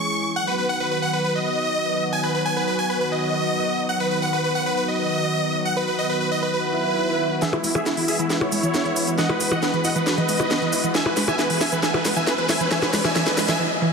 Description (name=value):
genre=uplifting trance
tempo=136 BPM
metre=4/4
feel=straight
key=E major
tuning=A4 = 441 Hz
part: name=supersaw chords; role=melody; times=0.0-13.6 s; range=E4 to C#6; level=-23 LUFS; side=equal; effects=low-pass filter, ping-pong delay
part: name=lush unison pad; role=sustained chords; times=0.0-13.6 s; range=D#3 to G#4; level=-26 LUFS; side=left 1 dB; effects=chorus
part: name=swell and riser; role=sound effects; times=6.7-13.6 s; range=none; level=-31 LUFS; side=right 1 dB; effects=none
part: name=wide unison pluck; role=arpeggios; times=7.4-13.9 s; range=E3 to F#4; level=-27 LUFS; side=right 1 dB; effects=vintage 12-bit sampler grit, ping-pong delay
part: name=techno drum kit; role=drums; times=7.4-13.6 s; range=hi-hat, percussion blips, shaker, snare drum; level=-23 LUFS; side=equal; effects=overdrive
room=moderate lush hall reverb, RT60 2.3 s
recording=dense, heavily limited modern master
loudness=-19 LUFS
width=side -5 dB against mid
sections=0.0-7.4 A section; 7.4-13.9 B section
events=filter sweep on analog synth pad 0.0-7.4; swell 6.7-7.4; build-up 7.4-13.9; drum fill 7.4-13.6; filter sweep on supersaw synth 7.4-13.9; filter sweep on synth arpeggio sound 7.4-13.9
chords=0.4 B; 7.4 Eadd9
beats=| 0.36 0.80 1.24 1.69 | 2.13 2.57 3.01 3.45 | 3.89 4.33 4.77 5.21 | 5.66 6.10 6.54 6.98 | 7.42 7.86 8.30 8.74 | 9.19 9.63 10.07 10.51 | 10.95 11.39 11.83 12.27 | 12.71 13.16 13.60